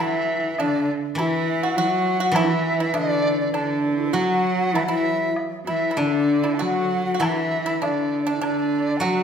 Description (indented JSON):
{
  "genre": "chinese traditional, Chinese chamber ensemble",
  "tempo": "100 BPM",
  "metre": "4/4",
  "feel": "rubato",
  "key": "D gong mode",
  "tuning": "A4 = 436 Hz",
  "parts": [
    { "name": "large dizi", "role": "melody", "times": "0.0-9.2 s", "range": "D4 to A5", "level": "-26 LUFS", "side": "equal", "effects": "none" },
    { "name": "breathy mellow low xiao", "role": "second line", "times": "0.0-9.2 s", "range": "D4 to F#4", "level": "-26 LUFS", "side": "left 5 dB", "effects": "none" },
    { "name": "clear cello", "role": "second line", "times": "0.0-9.2 s", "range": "D3 to F#3", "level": "-26 LUFS", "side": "right 6 dB", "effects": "none" },
    { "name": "pipa", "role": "second line", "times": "0.0-9.2 s", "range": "D4 to F#4", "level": "-28 LUFS", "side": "right 3 dB", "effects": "none" },
    { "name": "steel-string zither", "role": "accompaniment", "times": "0.0-9.2 s", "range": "D3 to F#3", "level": "-28 LUFS", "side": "left 1 dB", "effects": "none" },
    { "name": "woodblock", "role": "percussion", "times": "0.6-8.6 s", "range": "none", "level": "-33 LUFS", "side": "left 2 dB", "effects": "none" }
  ],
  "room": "wet recital hall reverb, RT60 1.4 s",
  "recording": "none",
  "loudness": "-20 LUFS",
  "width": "side -7 dB against mid",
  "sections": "0.0-9.2 A section",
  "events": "none",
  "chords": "none",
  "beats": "0.58 1.17 1.76 | 2.35 2.94 3.54 4.15 | 4.76 5.36 5.98 6.60 | 7.22 7.82 8.43 9.03"
}